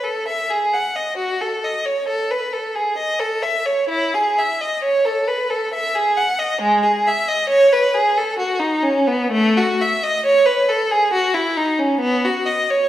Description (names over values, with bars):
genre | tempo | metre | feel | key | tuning
classical, baroque-style suite movement for unaccompanied violin | 67 BPM | 3/4 | rubato | E major | A4 = 441 Hz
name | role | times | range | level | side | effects
clear violin | solo | 0.0-12.9 s | G#3 to F#5 | -16 LUFS | equal | none
room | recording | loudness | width
wet recital hall reverb, RT60 1.7 s | heard from further back in the room | -16 LUFS | side -13 dB against mid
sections
0.0-12.9 A section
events
none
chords
none